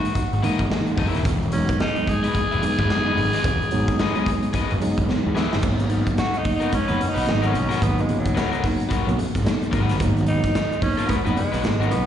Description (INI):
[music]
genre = funk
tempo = 110 BPM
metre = 4/4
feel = swing 60% on 16ths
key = G# minor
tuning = A4 = 439 Hz
[part]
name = breathy tenor saxophone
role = melody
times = 0.0-12.1 s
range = F#3 to G#4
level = -26 LUFS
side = equal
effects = slapback echo
[part]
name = mellow tine electric piano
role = stabs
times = 0.0-12.1 s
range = E3 to B4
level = -26 LUFS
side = right 2 dB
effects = medium stereo tremolo, slapback echo
[part]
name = raw garage drum kit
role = drums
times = 0.0-12.1 s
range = crash cymbal, hi-hat, kick drum, snare drum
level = -24 LUFS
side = equal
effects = none
[part]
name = fuzz picked electric bass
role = bass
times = 0.2-12.1 s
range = D#1 to E2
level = -24 LUFS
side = equal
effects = overdrive
[part]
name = crunchy overdriven guitar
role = accompaniment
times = 0.4-11.9 s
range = B3 to E5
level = -28 LUFS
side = left 9 dB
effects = slapback echo
[part]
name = congas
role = percussion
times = 0.4-12.1 s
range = none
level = -32 LUFS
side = right 2 dB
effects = none
[part]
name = tube shaker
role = percussion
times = 5.6-12.1 s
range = none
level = -51 LUFS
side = left 1 dB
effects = none
[sound]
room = light reverb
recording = live gig heard through the venue's PA, recital hall reverb, nothing above 10.8 kHz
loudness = -19 LUFS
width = side -10 dB against mid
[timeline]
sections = 0.0-5.6 A section; 5.6-12.1 B section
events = tine electric piano fill 4.5-5.6; drum fill 5.1-5.6; tenor saxophone solo 5.6-12.1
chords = 0.0 F#13; 1.3 Emaj7; 5.6 G#m9